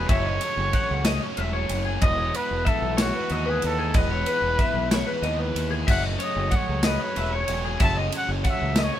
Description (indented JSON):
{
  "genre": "math rock and midwest emo",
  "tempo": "62 BPM (dotted quarters)",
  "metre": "6/8",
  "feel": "straight",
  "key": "unclear",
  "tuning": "A4 = 439 Hz",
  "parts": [
    { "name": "breathy trumpet", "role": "melody", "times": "0.0-9.0 s", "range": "F#4 to A5", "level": "-28 LUFS", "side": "right 1 dB", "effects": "none" },
    { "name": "twelve-string electric guitar", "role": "arpeggios", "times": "0.0-9.0 s", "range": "G#4 to F#5", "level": "-28 LUFS", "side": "left 3 dB", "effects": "none" },
    { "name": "overdriven electric guitar", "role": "riff", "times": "0.0-9.0 s", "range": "F#2 to E4", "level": "-31 LUFS", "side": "right 1 dB", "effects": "none" },
    { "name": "growling fingered electric bass", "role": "bass", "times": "0.0-8.9 s", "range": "E1 to D#2", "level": "-28 LUFS", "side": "equal", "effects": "overdrive" },
    { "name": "modern studio drum kit", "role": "drums", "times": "0.1-8.9 s", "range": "crash cymbal, kick drum, ride cymbal, snare drum", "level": "-26 LUFS", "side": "equal", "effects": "none" }
  ],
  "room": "light reverb",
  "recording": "band playing live in one room",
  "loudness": "-21 LUFS",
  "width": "side -11 dB against mid",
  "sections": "0.0-9.0 A section",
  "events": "none",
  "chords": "0.0 F#m7; 2.0 Emaj7; 5.9 F#m7"
}